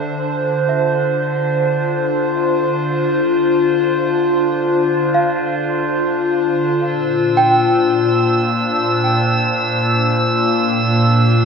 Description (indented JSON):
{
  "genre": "ambient",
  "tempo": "free time",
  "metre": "none",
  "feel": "none",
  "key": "D minor",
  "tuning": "A4 = 438 Hz",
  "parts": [
    { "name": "warbly tape-like pad", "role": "sustained chords", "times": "0.0-11.4 s", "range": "Bb2 to C5", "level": "-15 LUFS", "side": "left 1 dB", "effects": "chorus, built-in reverb, phaser, shimmer reverb" },
    { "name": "small celesta", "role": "arpeggios", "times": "0.0-11.4 s", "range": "E5 to G5", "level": "-21 LUFS", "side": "right 2 dB", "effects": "tape echo, shimmer reverb" },
    { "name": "drifting glass-harmonics texture", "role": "texture", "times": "7.0-11.4 s", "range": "E6", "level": "-19 LUFS", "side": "right 2 dB", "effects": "chorus, built-in reverb, shimmer reverb" }
  ],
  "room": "wet lush hall reverb, RT60 2.7 s",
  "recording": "nothing above 7.5 kHz",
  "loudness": "-14 LUFS",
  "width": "side -5 dB against mid",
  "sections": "0.0-11.4 A section",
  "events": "none",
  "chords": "0.0 Dm7; 6.8 Bbadd9"
}